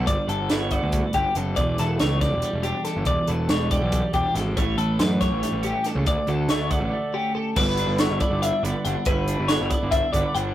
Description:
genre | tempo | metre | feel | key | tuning
math rock and midwest emo | 280 BPM (eighths) | 7/8 | straight | unclear | A4 = 441 Hz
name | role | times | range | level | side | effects
twelve-string electric guitar | accompaniment | 0.0-10.5 s | D2 to G4 | -28 LUFS | right 3 dB | none
twelve-string electric guitar | arpeggios | 0.0-10.5 s | G4 to F#5 | -26 LUFS | left 2 dB | none
fuzz picked electric bass | bass | 0.0-10.5 s | E1 to F#2 | -25 LUFS | equal | overdrive
crisp fusion drum kit | drums | 0.1-10.4 s | crash cymbal, hi-hat, kick drum, snare drum | -26 LUFS | equal | none
room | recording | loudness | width
light reverb | rough rehearsal-room recording | -20 LUFS | side -12 dB against mid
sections
0.0-7.6 A section; 7.6-10.5 B section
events
break 6.9-7.6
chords
0.0 Gmaj7; 1.6 Em7; 4.6 A7; 6.1 Dmaj7; 7.6 G6

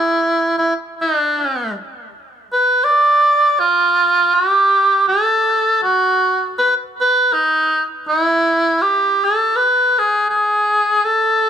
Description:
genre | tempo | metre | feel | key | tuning
hawaiian | 81 BPM | 4/4 | swing 57% on 8ths | unclear | A4 = 443 Hz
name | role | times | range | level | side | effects
warm cor anglais | solo | 0.0-11.5 s | D4 to D5 | -13 LUFS | right 1 dB | tape echo
room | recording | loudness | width
light reverb | none | -13 LUFS | side -8 dB against mid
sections
0.0-11.5 A section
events
none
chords
none

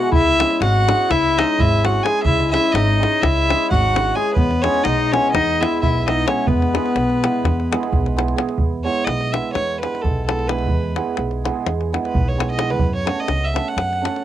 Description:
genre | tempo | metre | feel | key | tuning
balkan folk, Balkan wedding band | 256 BPM (eighths) | 9/8 | straight | E major | A4 = 440 Hz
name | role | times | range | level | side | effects
warm fiddle | melody | 0.0-14.2 s | A4 to G#5 | -22 LUFS | right 2 dB | cassette tape
clear clarinet | second line | 0.0-8.2 s | B3 to G#4 | -20 LUFS | left 6 dB | cassette tape
hammered dulcimer | accompaniment | 0.0-14.2 s | G#3 to A4 | -24 LUFS | right 7 dB | cassette tape
upright bass | bass | 0.1-14.1 s | G#1 to F#2 | -22 LUFS | equal | none
davul | percussion | 0.1-14.2 s | none | -22 LUFS | left 1 dB | none
room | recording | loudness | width
moderate booth ambience, RT60 0.2 s | home recording on cassette | -16 LUFS | side -12 dB against mid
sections
0.0-8.6 A section; 8.6-14.2 B section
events
fiddle solo 8.6-14.2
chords
0.1 C#m; 4.4 E; 12.8 F#m

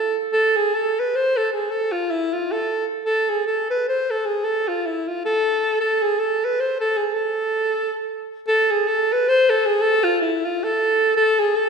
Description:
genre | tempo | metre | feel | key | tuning
balkan folk | free time | none | none | A harmonic minor | A4 = 440 Hz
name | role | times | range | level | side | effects
warm alto saxophone | solo | 0.0-11.7 s | E4 to C5 | -18 LUFS | equal | none
room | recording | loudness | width
wet recital hall reverb, RT60 1.7 s | recorded in a church or concert hall | -18 LUFS | side -5 dB against mid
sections
0.0-8.5 A section; 8.5-11.7 A section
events
speeding up 0.0-11.7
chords
none

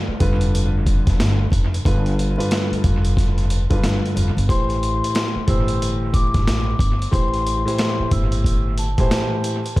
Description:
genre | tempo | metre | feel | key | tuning
hip hop, boom-bap hip-hop | 91 BPM | 4/4 | swing 62% on 16ths | A minor | A4 = 440 Hz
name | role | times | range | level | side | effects
upright bass | bass | 0.1-9.8 s | F1 to A1 | -21 LUFS | equal | none
dark baby grand piano | accompaniment | 0.2-9.8 s | G2 to C5 | -23 LUFS | equal | dub echo
boom bap sampler-style drum kit | drums | 0.2-9.8 s | hi-hat, kick drum, snare drum | -21 LUFS | equal | none
vibraphone with soft mallets | melody | 4.5-9.7 s | A5 to E6 | -27 LUFS | left 2 dB | dub echo
room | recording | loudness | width
studio ambience | echo-heavy mix, vinyl crackle | -17 LUFS | side -18 dB against mid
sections
0.0-9.8 A section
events
none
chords
0.0 G7; 4.5 Am7

